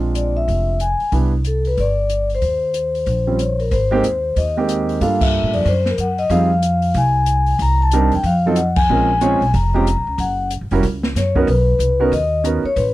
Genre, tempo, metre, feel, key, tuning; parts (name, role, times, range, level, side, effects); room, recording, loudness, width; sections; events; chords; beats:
jazz, small-group swing and bop; 186 BPM; 4/4; swing 63% on 8ths; Ab major from 3.7 s; A4 = 439 Hz
warm grand piano; accompaniment; 0.0-12.6 s; Gb3 to Db5; -20 LUFS; right 4 dB
upright bass; bass; 0.0-12.9 s; F1 to A2; -19 LUFS; equal
open jazz drum kit; drums; 0.1-12.9 s; crash cymbal, hi-hat, kick drum, snare drum; -24 LUFS; equal
vibraphone with soft mallets; melody; 0.2-12.9 s; A4 to Bb5; -19 LUFS; left 3 dB
little or no reverb; dry, close 1970s-style studio recording; -15 LUFS; side -16 dB against mid
0.0-3.7 A section; 3.7-12.9 B section
band accent 5.2, 8.7
0.0 Bb9; 1.1 Cmaj7; 2.4 Eb5; 3.7 Abmaj9; 5.0 Gm9; 5.7 N.C.; 6.3 Fm7; 7.6 Cm7; 8.2 F7b9; 8.9 Bbm7; 10.2 Gb(b9); 11.5 Bmaj9
0.15 0.48 0.80 | 1.13 1.45 1.77 2.10 | 2.42 2.75 3.07 3.39 | 3.72 4.04 4.36 4.69 | 5.01 5.33 5.66 5.98 | 6.30 6.63 6.95 7.27 | 7.60 7.92 8.24 8.56 | 8.89 9.21 9.53 9.86 | 10.18 10.50 10.83 11.15 | 11.47 11.79 12.12 12.44 | 12.76